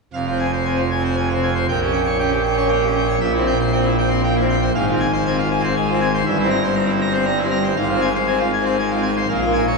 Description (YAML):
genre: classical, organ toccata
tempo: 118 BPM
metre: 3/4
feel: straight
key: F minor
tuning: A4 = 440 Hz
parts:
  - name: pipe organ, full organ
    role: solo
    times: 0.1-9.8 s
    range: F1 to Bb5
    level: -16 LUFS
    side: equal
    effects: none
room: wet church reverb, RT60 3.5 s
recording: small room ambience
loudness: -16 LUFS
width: side -2 dB against mid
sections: 0.1-9.8 A section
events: none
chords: 0.1 Fm; 1.7 Gdim/Bb; 3.2 C7/Bb; 4.7 Fm/Ab; 6.2 C7/G; 7.8 Fm/Ab; 9.3 Bbm7